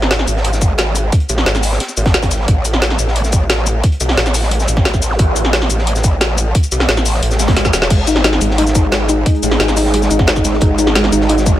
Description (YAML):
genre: dark technical drum and bass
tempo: 177 BPM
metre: 4/4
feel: straight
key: unclear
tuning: A4 = 440 Hz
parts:
  - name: growl bass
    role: bass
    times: 0.0-11.6 s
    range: E1 to B1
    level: -16 LUFS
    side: equal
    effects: distortion, chorus
  - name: drum and bass drum kit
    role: drums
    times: 0.0-11.5 s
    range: cabasa, crash cymbal, hi-hat, snare drum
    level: -17 LUFS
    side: equal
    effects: none
  - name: crunchy breakbeat drum kit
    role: drums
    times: 0.1-11.5 s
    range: hi-hat, snare drum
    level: -27 LUFS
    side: equal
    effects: none
  - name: electronic kick drum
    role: drums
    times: 0.6-11.5 s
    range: none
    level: -13 LUFS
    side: equal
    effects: none
  - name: zap and swell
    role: sound effects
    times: 5.1-5.2, 7.3-7.9 s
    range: none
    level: -24 LUFS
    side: left 1 dB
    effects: none
  - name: dark analog pad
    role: sustained chords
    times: 8.7-11.6 s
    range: G#3 to G#4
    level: -20 LUFS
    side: right 3 dB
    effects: chorus, sidechain pumping
  - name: soft round pluck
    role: arpeggios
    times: 7.9-11.5 s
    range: G#3 to D#4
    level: -17 LUFS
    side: left 3 dB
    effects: chorus, sidechain pumping, dub echo
room: little or no reverb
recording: none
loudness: -12 LUFS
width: side -13 dB against mid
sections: 0.0-11.6 A section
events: swell 7.3-7.9; drum fill 7.6-7.9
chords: 0.0 N.C.; 2.5 A5; 7.9 G#5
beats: 0.11 0.45 0.79 | 1.12 1.46 1.80 2.14 | 2.48 2.82 3.16 3.50 | 3.84 4.18 4.51 4.85 | 5.19 5.53 5.87 6.21 | 6.55 6.89 7.23 7.57 | 7.91 8.24 8.58 8.92 | 9.26 9.60 9.94 10.28 | 10.62 10.96 11.29